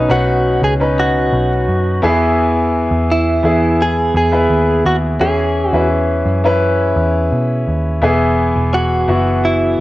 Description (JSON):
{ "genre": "piano-driven pop", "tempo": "85 BPM", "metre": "4/4", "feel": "straight", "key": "E major", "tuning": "A4 = 441 Hz", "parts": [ { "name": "direct-recorded clean electric guitar", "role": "melody", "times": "0.0-9.8 s", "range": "D#4 to G#4", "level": "-17 LUFS", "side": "right 1 dB", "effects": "none" }, { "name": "bright concert grand piano", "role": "accompaniment", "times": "0.0-9.8 s", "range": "B2 to B4", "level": "-16 LUFS", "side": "left 1 dB", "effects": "cassette tape" }, { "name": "vintage muted picked electric bass", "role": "bass", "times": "0.0-9.7 s", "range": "E1 to B2", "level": "-17 LUFS", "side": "equal", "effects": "none" } ], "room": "light reverb, small room ambience", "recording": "home recording on cassette", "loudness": "-12 LUFS", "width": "side -16 dB against mid", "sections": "0.0-9.8 A section", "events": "none", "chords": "0.0 Badd9; 2.0 E; 5.2 C#m/E; 8.0 E" }